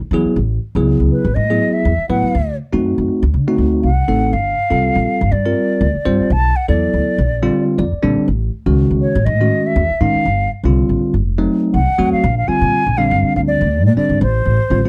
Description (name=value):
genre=electric jazz fusion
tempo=121 BPM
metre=4/4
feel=swing 55% on 16ths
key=unclear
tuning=A4 = 440 Hz
part: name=upright bass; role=bass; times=0.0-14.8 s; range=F1 to E3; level=-19 LUFS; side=equal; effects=none
part: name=bell-like tine electric piano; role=accompaniment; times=0.1-14.9 s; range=D3 to D5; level=-19 LUFS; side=equal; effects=none
part: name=mellow hollow silver concert flute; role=melody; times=1.1-14.9 s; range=B4 to A5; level=-21 LUFS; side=equal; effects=slapback echo
room=little or no reverb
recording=dry, close 1970s-style studio recording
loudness=-16 LUFS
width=mono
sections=0.0-12.2 A section; 12.2-14.9 B section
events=tine electric piano fill 7.5-8.3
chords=0.4 A69; 2.4 D7b9; 4.3 Gm9; 6.3 Bm7; 7.3 Bbadd9; 8.3 A6; 10.3 G7(no3); 11.2 F7b9; 12.2 Bb9; 14.2 F69/A